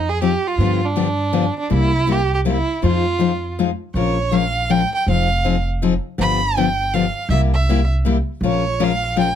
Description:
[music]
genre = acoustic string swing (jazz manouche)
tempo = 161 BPM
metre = 3/4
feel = swing 61% on 8ths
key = F minor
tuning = A4 = 441 Hz
[part]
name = warm violin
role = melody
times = 0.0-9.4 s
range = D4 to B5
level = -21 LUFS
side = right 4 dB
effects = none
[part]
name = upright bass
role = bass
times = 0.0-9.3 s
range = F1 to G2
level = -20 LUFS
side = right 1 dB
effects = none
[part]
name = picked steel-string acoustic guitar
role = accompaniment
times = 0.2-9.3 s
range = C3 to C5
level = -20 LUFS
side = left 7 dB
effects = none
[sound]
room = light reverb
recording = close, detailed microphones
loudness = -16 LUFS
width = side -9 dB against mid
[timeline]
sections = 0.0-3.9 A section; 3.9-9.4 B section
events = none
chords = 0.0 Fm7; 0.6 G7; 1.7 C7; 2.8 Fm7; 3.9 Bbm7; 5.1 Fm7; 6.2 G7; 7.3 C7; 8.4 Bbm7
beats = 0.21 | 0.59 0.96 1.33 | 1.71 2.08 2.46 | 2.83 3.20 3.58 | 3.95 4.32 4.70 | 5.07 5.44 5.81 | 6.19 6.56 6.93 | 7.30 7.68 8.05 | 8.42 8.79 9.17

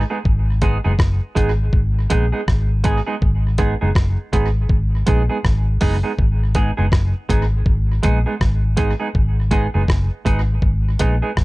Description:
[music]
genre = roots reggae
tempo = 81 BPM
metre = 4/4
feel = swing 61% on 16ths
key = G# minor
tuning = A4 = 442 Hz
[part]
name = semi-hollow electric guitar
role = accompaniment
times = 0.0-11.3 s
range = G#3 to G#4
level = -23 LUFS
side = right 3 dB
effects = lush chorus, tape echo, plate reverb
[part]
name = vintage muted fingered electric bass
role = bass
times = 0.0-11.4 s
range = F#1 to A#1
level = -18 LUFS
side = equal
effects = none
[part]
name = dusty soul sampler-style drum kit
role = drums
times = 0.3-11.4 s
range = hi-hat, kick drum, rim click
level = -19 LUFS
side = equal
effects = none
[sound]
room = little or no reverb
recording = dark, warm production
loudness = -16 LUFS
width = side -21 dB against mid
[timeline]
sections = 0.0-11.4 A section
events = none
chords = 0.0 G#m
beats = | 0.25 0.99 1.74 2.48 | 3.22 3.96 4.70 5.44 | 6.18 6.92 7.67 8.41 | 9.15 9.89 10.63 11.37

